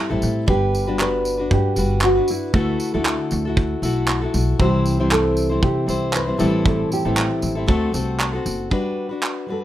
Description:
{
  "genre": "acoustic pop",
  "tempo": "117 BPM",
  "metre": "4/4",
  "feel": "swing 55% on 16ths",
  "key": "G major",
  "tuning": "A4 = 439 Hz",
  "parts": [
    { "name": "fingerpicked plugged-in steel-string acoustic guitar", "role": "accompaniment", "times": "0.0-9.6 s", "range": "A2 to C5", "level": "-22 LUFS", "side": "left 2 dB", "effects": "none" },
    { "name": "upright bass", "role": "bass", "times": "0.1-8.7 s", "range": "F#1 to C3", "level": "-23 LUFS", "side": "equal", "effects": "none" },
    { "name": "loose indie drum kit", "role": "drums", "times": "0.2-9.4 s", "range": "handclaps, kick drum, tambourine", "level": "-23 LUFS", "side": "right 1 dB", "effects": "none" },
    { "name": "nylon-string guitar", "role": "melody", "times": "0.5-9.6 s", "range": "E4 to B4", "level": "-23 LUFS", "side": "right 1 dB", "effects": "none" }
  ],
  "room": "light reverb",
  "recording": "none",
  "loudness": "-18 LUFS",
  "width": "side -12 dB against mid",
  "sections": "0.0-8.7 A section",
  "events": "none",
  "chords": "0.5 Gmaj7; 2.5 Dadd9; 4.6 C; 6.4 Am7; 7.7 D7; 8.7 Gmaj7"
}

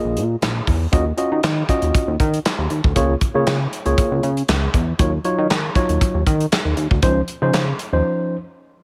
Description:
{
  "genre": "early-eighties boogie funk",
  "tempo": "118 BPM",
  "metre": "4/4",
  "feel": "straight",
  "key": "Eb dorian",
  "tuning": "A4 = 437 Hz",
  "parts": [
    { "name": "tine electric piano", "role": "accompaniment", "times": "0.0-8.4 s", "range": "F3 to Eb5", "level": "-23 LUFS", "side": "equal", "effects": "none" },
    { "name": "chorused synth bass", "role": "bass", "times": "0.0-8.0 s", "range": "Bb1 to Eb3", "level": "-22 LUFS", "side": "equal", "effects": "none" },
    { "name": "modern studio drum kit", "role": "drums", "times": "0.2-7.9 s", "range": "handclaps, hi-hat, kick drum, snare drum", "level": "-22 LUFS", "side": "equal", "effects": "gated reverb" }
  ],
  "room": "small room ambience",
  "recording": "none",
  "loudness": "-19 LUFS",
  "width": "mono",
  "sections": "0.0-8.8 A section",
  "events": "break 8.0-8.8",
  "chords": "0.0 Bb7(no3); 0.9 Ebm9; 3.0 Db6; 5.0 Ebm9; 7.0 Dbmaj9"
}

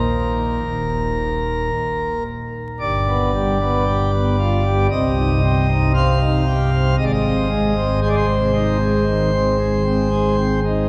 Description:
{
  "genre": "classical, chorale-style piece for pipe organ",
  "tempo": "57 BPM",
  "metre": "4/4",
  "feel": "straight",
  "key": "unclear",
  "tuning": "A4 = 440 Hz",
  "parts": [
    { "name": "pipe organ, principal chorus", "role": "solo", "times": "0.0-10.9 s", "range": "Eb1 to F5", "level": "-19 LUFS", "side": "equal", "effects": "none" }
  ],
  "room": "wet cathedral reverb, RT60 6.5 s",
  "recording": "heard from further back in the room, vinyl crackle",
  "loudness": "-19 LUFS",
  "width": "mono",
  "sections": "0.0-2.8 A section; 2.8-10.9 B section",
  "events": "none",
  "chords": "0.0 Eb5; 2.8 G7; 4.9 Cm; 7.0 Ab"
}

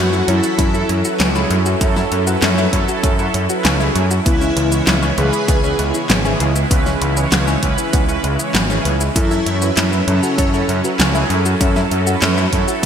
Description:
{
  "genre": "synthwave",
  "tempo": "98 BPM",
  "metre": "4/4",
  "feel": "straight",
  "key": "unclear",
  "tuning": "A4 = 441 Hz",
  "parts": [
    { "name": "soft octave-layered synth lead", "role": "melody", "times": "0.0-10.9 s", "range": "C#4 to G#4", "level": "-24 LUFS", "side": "left 2 dB", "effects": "chorus, tremolo, cassette tape, digital delay" },
    { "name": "string machine, violins", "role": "second line", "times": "0.0-10.9 s", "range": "C#4 to G#4", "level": "-27 LUFS", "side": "equal", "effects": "ensemble chorus, cassette tape, ping-pong delay" },
    { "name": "soft supersaw", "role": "sustained chords", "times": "0.0-12.9 s", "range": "C#3 to A4", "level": "-22 LUFS", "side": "right 2 dB", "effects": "wide subtle chorus, sidechain pumping" },
    { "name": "analog pluck", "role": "arpeggios", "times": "0.0-12.9 s", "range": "B3 to C#5", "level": "-24 LUFS", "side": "left 4 dB", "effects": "chorus, phaser, cassette tape, ping-pong delay" },
    { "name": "mellow synth brass", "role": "stabs", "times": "0.0-12.9 s", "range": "E3 to C#5", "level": "-23 LUFS", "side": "right 3 dB", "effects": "chorus, ping-pong delay" },
    { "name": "growling picked electric bass", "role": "bass", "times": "0.0-12.9 s", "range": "G#1 to F#2", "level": "-19 LUFS", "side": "equal", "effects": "overdrive, sidechain pumping" },
    { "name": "pop drum kit", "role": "drums", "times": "0.1-12.9 s", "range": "handclaps, hi-hat, shaker, snare drum", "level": "-20 LUFS", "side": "equal", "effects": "small room reverb, gated reverb" },
    { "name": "electronic kick drum", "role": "drums", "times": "0.6-12.9 s", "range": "none", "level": "-18 LUFS", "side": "equal", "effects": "small room reverb" }
  ],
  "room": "moderate lush hall reverb, RT60 2.7 s",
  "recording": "bright 1980s-style digital production",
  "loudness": "-14 LUFS",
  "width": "side -8 dB against mid",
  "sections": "0.0-12.9 A section",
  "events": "none",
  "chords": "0.0 F#m7; 4.3 C#m7; 9.2 F#m7"
}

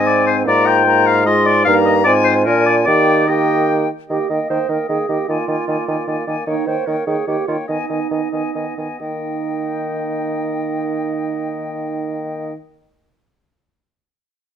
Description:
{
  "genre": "quick classical-period movement for wind quintet",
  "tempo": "128-152 BPM",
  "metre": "3/4",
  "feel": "straight",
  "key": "Eb major",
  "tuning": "A4 = 439 Hz",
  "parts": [
    { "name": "bright silver concert flute", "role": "melody", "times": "0.0-12.5 s", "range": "G5 to C6", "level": "-24 LUFS", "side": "left 8 dB", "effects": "none" },
    { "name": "warm oboe", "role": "second line", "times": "0.0-12.5 s", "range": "Bb4 to G5", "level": "-20 LUFS", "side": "left 3 dB", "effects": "none" },
    { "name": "clear French horn", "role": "accompaniment", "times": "0.0-12.5 s", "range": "Ab3 to D4", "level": "-25 LUFS", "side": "left 1 dB", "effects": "none" },
    { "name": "mellow clarinet", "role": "accompaniment", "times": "0.0-12.5 s", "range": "C4 to Eb5", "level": "-23 LUFS", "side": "right 8 dB", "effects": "none" },
    { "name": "mellow bassoon", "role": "bass", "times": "0.0-12.5 s", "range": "G2 to Eb3", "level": "-20 LUFS", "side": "right 2 dB", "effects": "none" }
  ],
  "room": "light reverb",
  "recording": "dark, warm production",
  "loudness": "-15 LUFS",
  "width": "side -8 dB against mid",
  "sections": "0.0-4.1 A section; 4.1-9.0 B section; 9.0-11.8 C section",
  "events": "slowing down 5.9-9.0",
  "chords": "0.5 Bb5/Ab; 1.7 Eb/G; 2.1 Fm/Ab; 2.5 Bb7; 2.9 Eb; 5.3 Bb7/Eb; 6.5 Eb7; 7.7 Abm/Eb; 9.0 Eb"
}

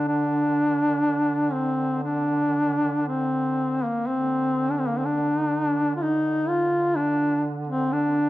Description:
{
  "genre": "caucasian folk, Caucasian lament",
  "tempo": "57-63 BPM",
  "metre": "4/4",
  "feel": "rubato",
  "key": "D phrygian",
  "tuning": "A4 = 440 Hz",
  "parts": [
    { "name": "warm duduk", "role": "melody", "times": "0.0-8.3 s", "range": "Bb3 to F4", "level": "-22 LUFS", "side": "equal", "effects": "none" },
    { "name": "mellow duduk", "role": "drone", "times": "0.0-8.3 s", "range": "D3", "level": "-31 LUFS", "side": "right 2 dB", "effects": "none" }
  ],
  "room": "moderate recital hall reverb, RT60 1.5 s",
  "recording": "dark, warm production",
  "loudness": "-21 LUFS",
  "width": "side -16 dB against mid",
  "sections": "0.0-4.1 A section; 4.1-8.3 B section",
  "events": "none",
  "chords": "none"
}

